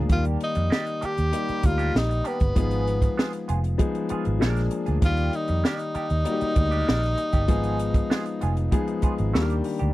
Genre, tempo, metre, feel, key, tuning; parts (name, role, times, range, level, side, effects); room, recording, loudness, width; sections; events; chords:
lush 1970s-style soul; 97 BPM; 4/4; straight; Eb major; A4 = 440 Hz
clear concert grand piano; accompaniment; 0.0-9.9 s; Eb3 to Bb5; -28 LUFS; left 4 dB
semi-hollow electric guitar; riff; 0.0-9.9 s; Bb3 to Bb4; -35 LUFS; right 6 dB; wah
vintage muted fingered electric bass; bass; 0.0-9.9 s; F1 to F2; -25 LUFS; right 1 dB
breathy tenor saxophone; melody; 0.1-9.3 s; Cb4 to G4; -28 LUFS; left 1 dB
compact cocktail drum kit; drums; 0.1-9.9 s; hi-hat, kick drum, snare drum; -23 LUFS; equal
little or no reverb; dry, close 1970s-style studio recording; -22 LUFS; side -17 dB against mid
0.0-9.9 A section
0.1 Ebmaj7; 2.6 Abm6; 4.4 Bb7; 5.0 Ebmaj7; 7.5 Abm6; 9.3 Ebmaj7